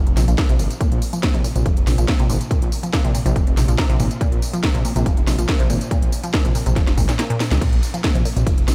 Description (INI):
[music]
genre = driving peak-time techno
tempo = 141 BPM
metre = 4/4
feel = straight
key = unclear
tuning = A4 = 440 Hz
[part]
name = dark detuned saw bass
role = bass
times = 0.0-8.7 s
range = F1 to Db2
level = -23 LUFS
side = equal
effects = sidechain pumping
[part]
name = techno drum kit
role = drums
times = 0.1-8.7 s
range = crash cymbal, hi-hat, ride cymbal, snare drum, tambourine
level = -28 LUFS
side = equal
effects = sidechain pumping on hats, studio reverb, sidechain pumping on perc, sidechain pumping on cymbals
[part]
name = resonant blip pluck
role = riff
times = 0.2-8.7 s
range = Bb2 to Bb3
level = -27 LUFS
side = equal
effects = phaser, tube saturation, sidechain pumping, delay
[part]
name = electronic kick drum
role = drums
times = 0.4-8.6 s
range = none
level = -22 LUFS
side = equal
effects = studio reverb
[sound]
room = light reverb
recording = none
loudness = -19 LUFS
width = mono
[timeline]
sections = 0.0-8.7 A section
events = drum fill 6.8-7.6; kick drops out 7.2-7.6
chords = 0.0 Bb5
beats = 0.38 | 0.81 1.23 1.66 2.08 | 2.51 2.93 3.36 3.78 | 4.21 4.63 5.06 5.49 | 5.91 6.34 6.76 7.19 | 7.61 8.04 8.46